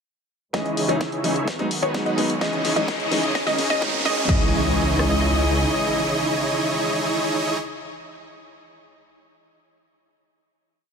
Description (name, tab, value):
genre	EDM, festival progressive house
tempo	128 BPM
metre	4/4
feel	straight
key	C# minor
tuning	A4 = 441 Hz
part	clear concert grand piano	accompaniment	0.5-7.6 s	D#3 to D#5	-27 LUFS	left 1 dB	sidechain pumping, ping-pong delay
part	warm studio string section	sustained chords	0.5-7.6 s	C#3 to D#5	-30 LUFS	left 1 dB	sidechain pumping, low-pass filter
part	wide unison pluck	arpeggios	0.5-7.6 s	C#5 to D#5	-28 LUFS	moving between left 5 dB and right 1 dB	auto-pan, sidechain pumping, ping-pong delay
part	dense compressed supersaw	riff	0.5-7.6 s	C#4 to E5	-24 LUFS	right 1 dB	sidechain pumping, low-pass filter, ping-pong delay
part	wide detuned saw bass	bass	0.5-5.7 s	C#2	-28 LUFS	equal	none
part	big-room dance drum kit	drums	0.5-5.1 s	kick drum, rim click	-23 LUFS	equal	high-pass filter on kick, high-pass filter on snare
part	big-room dance drum kit	drums	0.5-4.4 s	crash cymbal, hi-hat, snare drum	-30 LUFS	left 2 dB	high-pass filter on snare, high-pass filter on hats, high-pass filter on cymbals
part	riser and impact	sound effects	1.6-7.6 s	none	-30 LUFS	right 1 dB	none
room	light reverb, digital ambience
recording	high-pass filter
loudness	-19 LUFS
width	side -6 dB against mid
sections	0.5-4.3 build; 4.3-8.0 final chord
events	build-up 0.5-4.3; drum fill 0.5-4.3; filter sweep on supersaw synth 0.5-4.3; filter sweep on synth pluck 0.5-4.3; filter sweep on string section 0.5-4.3; filter sweep 0.5-4.3; riser 1.6-4.3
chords	0.5 C#madd9; 1.5 G#m7; 2.4 C#madd9; 3.4 G#sus4/C#; 4.3 C#madd9